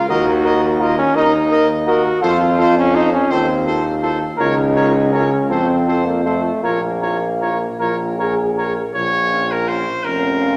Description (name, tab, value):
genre	classical, brass quintet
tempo	51-57 BPM (dotted quarters)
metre	6/8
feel	straight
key	Bb minor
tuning	A4 = 438 Hz
part	mellow trombone	accompaniment	0.0-10.5 s	A3 to Gb4	-21 LUFS	equal	none
part	bright trumpet	melody	0.1-10.6 s	Bb4 to Eb5	-26 LUFS	equal	none
part	warm flugelhorn	second line	0.1-10.5 s	F4 to Bb4	-26 LUFS	equal	none
part	mellow French horn	accompaniment	0.1-10.6 s	Db4 to Bb4	-26 LUFS	equal	none
part	clear tuba	bass	0.1-10.6 s	F1 to F2	-22 LUFS	equal	none
room	wet recital hall reverb, RT60 1.8 s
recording	none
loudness	-17 LUFS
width	mono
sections	0.0-9.0 A section; 9.0-10.6 A section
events	none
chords	0.1 Ebm; 2.2 F; 3.3 F7/Eb; 4.4 Bbm/Db; 5.5 F; 6.6 Bbm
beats	| 0.10 1.16 | 2.23 3.31 | 4.40 5.51 | 6.64 7.80 | 8.96 10.05